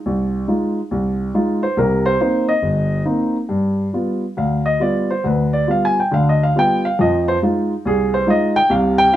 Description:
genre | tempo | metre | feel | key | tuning
solo jazz | 139 BPM | 4/4 | swing 65% on 8ths, rubato | unclear | A4 = 440 Hz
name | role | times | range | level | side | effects
dark grand piano | solo | 0.1-9.2 s | G1 to Ab5 | -15 LUFS | equal | none
room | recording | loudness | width
moderate club reverb, RT60 0.7 s | none | -15 LUFS | side -12 dB against mid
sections
0.0-9.2 A section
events
grand piano solo 0.0-9.2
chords
0.0 Fm7; 1.8 Cm7; 3.5 G7; 7.0 Fm7

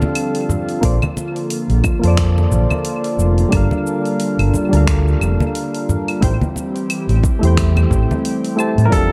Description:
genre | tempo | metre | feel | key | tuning
sunset chillout | 89 BPM | 4/4 | swing 57% on 16ths | unclear | A4 = 436 Hz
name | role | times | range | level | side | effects
soft electric-piano-like synth keys | accompaniment | 0.0-9.1 s | F3 to A5 | -23 LUFS | equal | chorus, analog delay
airy breathy pad | sustained chords | 0.0-9.1 s | D3 to A4 | -26 LUFS | equal | chorus
deep house drum kit | drums | 0.0-9.1 s | claves, finger snaps, hi-hat, shaker | -29 LUFS | equal | analog delay
congas | percussion | 0.0-8.2 s | none | -24 LUFS | equal | none
overdriven fingered electric bass | bass | 0.8-9.0 s | F1 to A2 | -17 LUFS | equal | tube saturation
electronic kick drum | drums | 0.8-9.1 s | none | -21 LUFS | equal | none
clear baby grand piano | melody | 8.9-9.1 s | A4 to Bb4 | -20 LUFS | equal | none
room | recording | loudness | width
moderate spring reverb, RT60 2.0 s | echo-heavy mix | -17 LUFS | mono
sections
0.0-9.1 A section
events
none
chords
0.0 F69; 0.8 Bbmaj7; 3.5 Gm9; 6.2 Am7

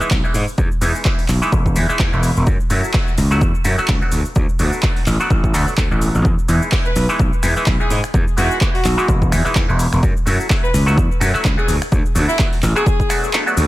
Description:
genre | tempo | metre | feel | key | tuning
filtered disco house | 127 BPM | 4/4 | swing 57% on 16ths | E major | A4 = 440 Hz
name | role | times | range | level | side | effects
bright clav | accompaniment | 0.0-13.7 s | E3 to A4 | -22 LUFS | equal | phaser, sidechain pumping, low-pass filter
gritty slap bass | bass | 0.0-13.7 s | E1 to G#2 | -18 LUFS | equal | overdrive, sidechain pumping, low-pass filter
punchy analog drum machine | drums | 0.0-13.7 s | cabasa, finger snaps, handclaps, hi-hat | -25 LUFS | equal | overdrive, sidechain pumping on perc, sidechain pumping on hats, sidechain pumping on cymbals
electronic kick drum | drums | 0.1-13.1 s | none | -18 LUFS | equal | overdrive
clear horn section | melody | 6.9-13.2 s | E4 to B4 | -23 LUFS | left 1 dB | sidechain pumping, low-pass filter, ping-pong delay
room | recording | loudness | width
little or no reverb | none | -14 LUFS | side -17 dB against mid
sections
0.0-13.7 A section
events
kick drops out 13.3-13.7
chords
0.0 Emaj7; 2.5 F#m7; 4.1 D6; 6.2 Emaj7; 10.0 F#m7; 11.7 D6

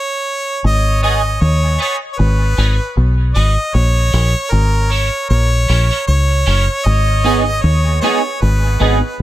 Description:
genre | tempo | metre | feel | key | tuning
reggae | 77 BPM | 4/4 | swing 57% on 16ths | G# minor | A4 = 439 Hz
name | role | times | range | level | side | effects
clear harmonica | melody | 0.0-9.2 s | A#4 to D#5 | -18 LUFS | right 1 dB | dub echo
deep dub fingered electric bass | bass | 0.6-9.2 s | F#1 to D#2 | -13 LUFS | equal | none
clean electric guitar | accompaniment | 1.0-9.0 s | B3 to A#4 | -20 LUFS | right 3 dB | analog chorus, high-pass filter, dub echo
room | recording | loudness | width
digital ambience | none | -12 LUFS | side -14 dB against mid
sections
0.6-9.2 A section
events
stop 0.0-0.6; filter sweep on clean electric guitar 0.0-6.8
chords
0.0 N.C.; 0.6 G#m; 3.7 A#dim; 6.8 G#m

